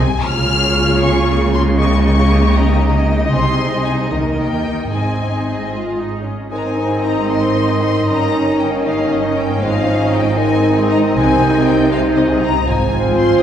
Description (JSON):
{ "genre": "quick classical-period movement for symphony orchestra", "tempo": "78 BPM (dotted quarters)", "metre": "6/8", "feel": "rubato", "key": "Ab major", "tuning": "A4 = 440 Hz", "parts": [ { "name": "warm studio violin section", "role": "melody", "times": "0.0-13.4 s", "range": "Eb5 to F6", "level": "-22 LUFS", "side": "left 4 dB", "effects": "none" }, { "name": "rich studio violin section", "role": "second line", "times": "0.0-13.4 s", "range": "G3 to Eb5", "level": "-24 LUFS", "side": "left 2 dB", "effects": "none" }, { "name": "warm studio viola section", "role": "accompaniment", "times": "0.0-13.4 s", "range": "Bb3 to F4", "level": "-21 LUFS", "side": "right 1 dB", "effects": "none" }, { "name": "dark studio double bass section", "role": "bass", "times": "0.0-13.3 s", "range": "G1 to Eb2", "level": "-19 LUFS", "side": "equal", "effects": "none" }, { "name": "warm studio cello section", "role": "bass", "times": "0.0-13.3 s", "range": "G2 to Eb3", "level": "-21 LUFS", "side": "right 2 dB", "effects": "none" }, { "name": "dark clarinet", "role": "second line", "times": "6.5-13.4 s", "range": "C5 to Eb5", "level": "-25 LUFS", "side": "right 1 dB", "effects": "none" }, { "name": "mellow bassoon", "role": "accompaniment", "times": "6.5-13.4 s", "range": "C3 to F3", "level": "-22 LUFS", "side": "right 2 dB", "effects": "none" }, { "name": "mellow French horn section", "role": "sustained chords", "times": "6.5-13.4 s", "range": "C4 to F4", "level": "-19 LUFS", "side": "equal", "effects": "none" } ], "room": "wet concert hall reverb, RT60 1.8 s", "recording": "heard from further back in the room", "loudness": "-13 LUFS", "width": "side -9 dB against mid", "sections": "0.0-6.5 A section; 6.5-13.4 A section", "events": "none", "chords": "0.2 Bbm7/Db; 1.8 Eb7/Db; 3.3 Ab/C; 4.1 Eb; 4.9 Ab; 8.1 Eb7/G; 9.6 Ab; 11.2 Ab/C; 12.7 Fm/Ab" }